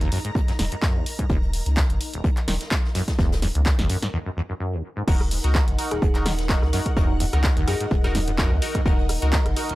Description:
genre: acid house.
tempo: 127 BPM.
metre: 4/4.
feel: swing 55% on 16ths.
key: Eb minor.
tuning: A4 = 440 Hz.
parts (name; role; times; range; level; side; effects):
string machine, full ensemble; sustained chords; 0.0-9.8 s; Eb4 to Bb5; -35 LUFS; equal; phaser, ensemble chorus, sidechain pumping.
acid bass, saw; riff; 0.0-9.8 s; Eb1 to Eb3; -27 LUFS; equal; lush chorus, analog delay.
warm sub bass; bass; 0.0-9.5 s; Eb1 to Db2; -24 LUFS; equal; sidechain pumping.
punchy analog drum machine; drums; 0.0-9.8 s; crash cymbal, handclaps, hi-hat, rim click, snare drum; -29 LUFS; equal; none.
jazz brush drum kit; drums; 0.1-9.7 s; hi-hat, snare drum; -40 LUFS; left 2 dB; none.
electronic kick drum; drums; 0.4-9.4 s; none; -22 LUFS; equal; none.
band-passed chord stab; stabs; 5.1-9.7 s; Eb4 to Bb4; -31 LUFS; equal; phaser, analog delay.
warbly tape-like pad; texture; 5.3-9.8 s; Eb4 to Gb5; -35 LUFS; right 4 dB; chorus, built-in reverb, sidechain pumping.
thumb-piano-like synth pluck; melody; 5.9-8.3 s; Ab4; -34 LUFS; left 3 dB; chorus, vintage 12-bit sampler grit, analog delay.
room: digital ambience.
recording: dry, gritty hardware recording.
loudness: -20 LUFS.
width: side -18 dB against mid.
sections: 0.0-5.1 A section; 5.1-9.8 B section.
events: break 4.1-5.1; drop 5.1-9.8.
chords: 0.0 Ebm.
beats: 0.35 0.83 | 1.30 1.77 2.24 2.72 | 3.19 3.66 4.13 4.61 | 5.08 5.55 6.02 6.50 | 6.97 7.44 7.91 8.38 | 8.86 9.33.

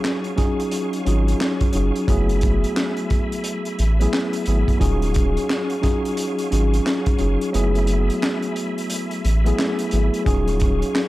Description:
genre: hip hop, boom-bap hip-hop.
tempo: 88 BPM.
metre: 4/4.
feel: swing 62% on 16ths.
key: Eb minor.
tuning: A4 = 440 Hz.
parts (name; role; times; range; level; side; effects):
mellow tine electric piano; accompaniment; 0.0-11.1 s; Gb3 to Ab4; -22 LUFS; equal; medium stereo tremolo, cassette tape, high-pass filter, low-pass filter, tape echo.
bright tonewheel organ; sustained chords; 0.0-11.1 s; Gb3 to Db6; -34 LUFS; equal; chorus vibrato, fast rotary speaker, high-pass filter, low-pass filter.
crunchy breakbeat drum kit; drums; 0.0-11.1 s; handclaps, hi-hat, kick drum, snare drum; -23 LUFS; equal; none.
saturated sub bass; bass; 1.1-10.8 s; Eb1 to A1; -19 LUFS; equal; none.
room: studio reverb.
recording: echo-heavy mix.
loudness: -18 LUFS.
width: side -17 dB against mid.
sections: 0.0-11.1 A section.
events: kick muted 7.5-10.3.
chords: 0.0 Ebm11; 2.1 Gbm11; 4.8 Ebm11; 7.5 Gbm11; 10.3 Ebm11.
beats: 0.04 0.72 1.40 | 2.08 2.77 3.45 4.13 | 4.81 5.49 6.17 6.86 | 7.54 8.22 8.90 9.58 | 10.27 10.95.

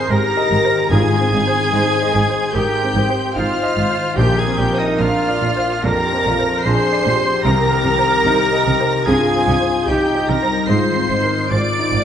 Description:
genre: cinematic, emotional film score for orchestra.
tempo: 74 BPM.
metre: 4/4.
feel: rubato.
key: unclear.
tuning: A4 = 441 Hz.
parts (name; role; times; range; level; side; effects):
warm studio violin section; melody; 0.0-12.0 s; Eb6 to D7; -25 LUFS; left 2 dB; none.
clear studio violin section; second line; 0.0-12.0 s; Eb5 to D6; -26 LUFS; left 2 dB; none.
flute section; second line; 0.0-12.0 s; Eb5 to D6; -25 LUFS; right 2 dB; none.
warm oboe; second line; 0.0-12.0 s; Eb4 to D5; -25 LUFS; right 1 dB; none.
clear concert grand piano; accompaniment; 0.0-12.0 s; Bb1 to Eb5; -23 LUFS; right 1 dB; none.
rich studio viola section; accompaniment; 0.0-12.0 s; Eb4 to D5; -22 LUFS; right 2 dB; none.
warm French horn section; sustained chords; 0.0-12.0 s; Eb4 to C5; -22 LUFS; left 5 dB; none.
concert harp; arpeggios; 0.0-12.0 s; Ab2 to C6; -26 LUFS; left 6 dB; none.
rich studio cello section; bass; 0.1-12.0 s; Ab2 to C3; -24 LUFS; right 2 dB; none.
rich studio double bass section; bass; 0.1-12.0 s; Ab1 to C2; -25 LUFS; right 2 dB; none.
timpani; percussion; 0.9-2.1 s; Ab2; -28 LUFS; equal; none.
room: wet scoring stage reverb, RT60 1.8 s.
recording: nothing above 10.6 kHz.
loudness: -14 LUFS.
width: side -9 dB against mid.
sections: 0.0-12.0 A section.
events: none.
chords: 0.0 Abadd9; 0.9 Fm7/Ab; 4.2 Bbadd9; 7.4 Cm; 10.7 Abadd9.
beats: 0.10 | 0.91 1.73 2.55 3.35 | 4.17 4.99 5.84 6.65 | 7.44 8.25 9.06 9.88 | 10.69 11.51.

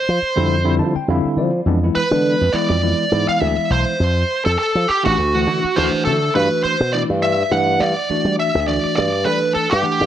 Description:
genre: electric jazz fusion.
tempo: 103 BPM.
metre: 4/4.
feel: swing 56% on 16ths.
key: unclear.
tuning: A4 = 440 Hz.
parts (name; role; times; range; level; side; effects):
smooth overdriven lead guitar; melody; 0.0-10.1 s; Gb4 to F#5; -18 LUFS; right 2 dB; none.
slap bass with an envelope filter; bass; 0.1-10.1 s; A1 to G3; -19 LUFS; equal; none.
barky tine electric piano; accompaniment; 0.4-10.1 s; D3 to A5; -21 LUFS; left 1 dB; medium stereo tremolo.
room: light reverb.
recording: none.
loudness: -15 LUFS.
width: side -10 dB against mid.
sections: 0.0-6.3 A section; 6.3-10.1 B section.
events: tine electric piano fill 0.5-1.7, 5.5-6.3.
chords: 0.0 Dm9/F; 1.7 E7/F; 4.0 F; 5.2 D; 6.3 Gmaj7(no3).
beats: 0.49 1.08 | 1.66 2.25 2.83 3.42 | 4.00 4.59 5.17 5.76 | 6.34 6.93 7.51 8.10 | 8.68 9.27 9.85.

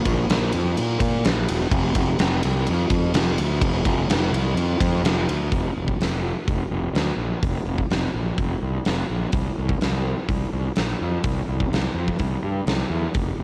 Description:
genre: rock, shoegaze and dream pop.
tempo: 126 BPM.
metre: 4/4.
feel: straight.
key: unclear.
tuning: A4 = 440 Hz.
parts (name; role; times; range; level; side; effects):
fuzz fingered electric bass; bass; 0.0-13.4 s; E1 to Bb2; -25 LUFS; equal; overdrive.
huge arena drum kit; drums; 0.1-13.3 s; hi-hat, kick drum, ride cymbal, snare drum; -26 LUFS; equal; none.
room: little or no reverb.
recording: home recording on cassette.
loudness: -23 LUFS.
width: mono.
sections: 0.0-5.5 A section; 5.5-13.4 B section.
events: none.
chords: none.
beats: 0.29 0.77 1.24 | 1.72 2.19 2.67 3.14 | 3.62 4.09 4.56 5.04 | 5.51 5.99 6.47 6.94 | 7.42 7.90 8.37 8.85 | 9.33 9.80 10.28 10.76 | 11.23 11.71 12.19 12.66 | 13.14.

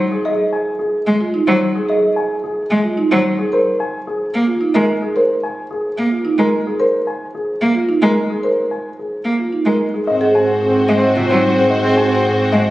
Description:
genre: classical, minimalist pattern music.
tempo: 110 BPM.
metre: 3/4.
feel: straight.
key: Ab mixolydian.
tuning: A4 = 443 Hz.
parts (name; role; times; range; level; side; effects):
dark grand piano; melody; 0.0-12.7 s; Ab4 to Ab5; -21 LUFS; left 1 dB; none.
marimba with soft mallets; arpeggios; 0.3-12.2 s; C4 to Bb4; -19 LUFS; right 2 dB; none.
rich cello; accompaniment; 1.1-12.6 s; C3 to Bb3; -18 LUFS; equal; none.
clear soprano saxophone; second line; 10.1-12.7 s; C4; -18 LUFS; equal; none.
rich symphonic string section; sustained chords; 10.1-12.7 s; Gb4 to C5; -20 LUFS; left 1 dB; none.
rich double bass; bass; 10.1-12.7 s; Ab2; -23 LUFS; equal; none.
room: wet recital hall reverb, RT60 1.8 s.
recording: recorded on a phone in the room, club reverb, compression.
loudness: -14 LUFS.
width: side -16 dB against mid.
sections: 0.0-10.1 A section; 10.1-12.7 A section.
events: none.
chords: 0.0 Ab7(no3); 3.5 Fm7/Ab; 10.1 Ab7.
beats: | 0.25 0.80 1.34 | 1.89 2.44 2.98 | 3.53 4.07 4.62 | 5.16 5.71 6.25 | 6.80 7.34 7.89 | 8.44 8.98 9.53 | 10.07 10.62 11.16 | 11.71 12.25.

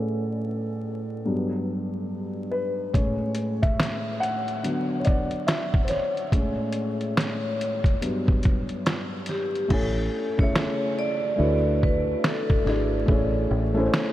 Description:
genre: lo-fi hip hop.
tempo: 71 BPM.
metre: 4/4.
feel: swing 63% on 16ths.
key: A major.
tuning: A4 = 443 Hz.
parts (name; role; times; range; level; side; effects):
felt-muted upright piano; accompaniment; 0.0-14.1 s; G2 to G#5; -26 LUFS; left 1 dB; cassette tape, low-pass filter.
trip hop sampler-style drum kit; drums; 2.9-14.1 s; crash cymbal, finger snaps, hi-hat, kick drum, snare drum; -25 LUFS; equal; none.
vibraphone with medium hard mallets; melody; 9.3-14.1 s; G4 to D5; -27 LUFS; equal; none.
deep dub fingered electric bass; bass; 9.7-13.9 s; G#1 to D2; -26 LUFS; equal; none.
room: moderate huge ambient reverb, RT60 8.8 s.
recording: dreamy mix soaked in reverb, vinyl crackle.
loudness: -22 LUFS.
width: side -14 dB against mid.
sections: 0.0-9.7 A section; 9.7-14.1 B section.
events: felt piano solo 0.0-9.7; filter sweep on felt piano 0.0-9.7; hi-hats muted 9.7-14.1.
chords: 0.0 Amaj7; 1.3 Gmaj7; 2.9 Amaj7; 4.6 D6; 6.3 Amaj7; 8.0 Gmaj7; 9.7 Amaj7; 11.4 D69; 13.1 Amaj7.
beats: 0.41 1.25 2.10 | 2.94 3.79 4.63 5.48 | 6.32 7.17 8.01 8.86 | 9.70 10.55 11.39 12.24 | 13.08 13.93.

